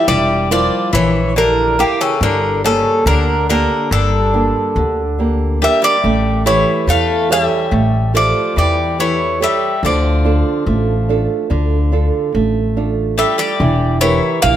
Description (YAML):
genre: greek folk, Greek bouzouki band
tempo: 142 BPM (eighths)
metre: 9/8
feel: straight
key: D harmonic minor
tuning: A4 = 441 Hz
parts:
  - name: Greek bouzouki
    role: melody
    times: 0.0-14.6 s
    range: G4 to F5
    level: -17 LUFS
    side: equal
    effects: none
  - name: Greek bouzouki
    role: second line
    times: 0.0-14.6 s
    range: C#3 to Bb3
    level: -20 LUFS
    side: left 5 dB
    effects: none
  - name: nylon-string guitar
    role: accompaniment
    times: 0.0-14.6 s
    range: D3 to E5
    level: -19 LUFS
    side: right 5 dB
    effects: none
  - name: upright bass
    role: bass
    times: 0.1-14.6 s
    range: E1 to E2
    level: -17 LUFS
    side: left 1 dB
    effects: none
room: moderate plate reverb, RT60 2.6 s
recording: none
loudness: -13 LUFS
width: side -11 dB against mid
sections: 0.0-13.6 A section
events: none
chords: 0.0 Edim; 2.2 Gm; 6.0 A7; 9.8 Dm; 13.6 Edim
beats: 0.07 0.50 0.93 1.36 1.78 | 2.21 2.64 3.06 3.49 3.91 4.34 4.76 5.19 5.61 | 6.04 6.46 6.88 7.30 7.73 8.15 8.57 8.99 9.41 | 9.83 10.25 10.67 11.09 11.51 11.93 12.35 12.76 13.18 | 13.60 14.01 14.43